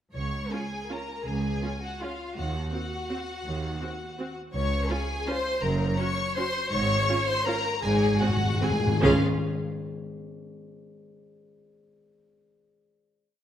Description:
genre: classical, orchestral ballroom waltz.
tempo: 146-179 BPM.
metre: 3/4.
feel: rubato.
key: Db major.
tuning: A4 = 439 Hz.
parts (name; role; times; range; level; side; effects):
rich studio violin section; second line; 0.1-9.2 s; F4 to Db5; -31 LUFS; left 2 dB; none.
clear chamber double bass section; bass; 0.1-9.2 s; Gb1 to Eb2; -32 LUFS; right 2 dB; none.
clear studio cello section; bass; 0.1-9.2 s; Db2 to Db3; -31 LUFS; right 1 dB; none.
clear chamber violin section; melody; 0.2-9.2 s; F5 to Db6; -34 LUFS; left 3 dB; none.
rich chamber viola section; accompaniment; 0.5-9.2 s; C4 to Ab4; -31 LUFS; right 2 dB; none.
timpani; percussion; 7.8-9.2 s; Ab2 to Db3; -28 LUFS; left 2 dB; none.
room: moderate scoring stage reverb, RT60 1.4 s.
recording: none.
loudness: -25 LUFS.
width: side -10 dB against mid.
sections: 0.2-9.0 A section; 9.0-10.2 final chord.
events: slowing down 6.2-9.0; timpani fill 7.8-9.0.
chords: 0.2 Db; 2.4 Cdim/Eb; 4.5 Db; 5.6 Gb; 6.7 Db/Ab; 7.8 Ab7; 9.0 Db5.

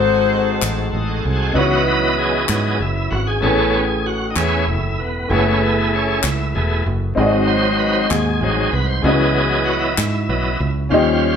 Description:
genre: slow gospel.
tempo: 64 BPM (dotted quarters).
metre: 6/8.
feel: straight.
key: C# minor.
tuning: A4 = 440 Hz.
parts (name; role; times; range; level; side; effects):
clear saxophone section; melody; 0.0-0.9 s; D#4 to B#4; -17 LUFS; left 6 dB; none.
warm upright piano; accompaniment; 0.0-11.4 s; G#2 to D#5; -21 LUFS; left 2 dB; none.
bright tonewheel organ; sustained chords; 0.0-11.4 s; E3 to G#5; -19 LUFS; right 1 dB; slow rotary speaker, overdrive.
fingered electric bass; bass; 0.0-11.4 s; E1 to G#2; -21 LUFS; right 1 dB; none.
group handclap; percussion; 0.6-10.3 s; none; -24 LUFS; left 5 dB; none.
room: moderate large studio reverb, RT60 0.9 s.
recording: band playing live in one room.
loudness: -15 LUFS.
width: side -7 dB against mid.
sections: 0.0-1.6 A section; 1.6-11.4 B section.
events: tonewheel organ fill 0.6-1.6; tonewheel organ solo 1.6-11.4.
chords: 0.0 G#7b9; 1.6 C#m11; 3.4 F#m11; 7.2 G#7; 9.0 C#m11.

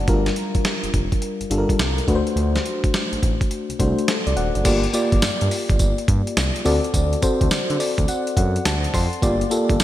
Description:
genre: R&B, new jack swing.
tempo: 105 BPM.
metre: 4/4.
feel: swing 65% on 16ths.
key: G minor.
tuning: A4 = 440 Hz.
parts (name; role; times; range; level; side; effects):
FM electric piano with tremolo; accompaniment; 0.0-9.8 s; G3 to C6; -22 LUFS; left 2 dB; none.
smooth synth bass; bass; 0.0-9.8 s; Eb1 to D3; -23 LUFS; right 1 dB; none.
dusty soul sampler-style drum kit; drums; 0.1-9.8 s; crash cymbal, hi-hat, kick drum, snare drum, tambourine; -22 LUFS; equal; gated reverb.
room: light reverb.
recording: bright 1980s-style digital production.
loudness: -18 LUFS.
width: side -13 dB against mid.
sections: 0.0-4.7 A section; 4.7-9.8 B section.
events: FM electric piano fill 7.5-9.2.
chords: 0.1 Gm7; 2.1 D7; 4.7 Gm7; 6.7 D7; 9.2 Gm7.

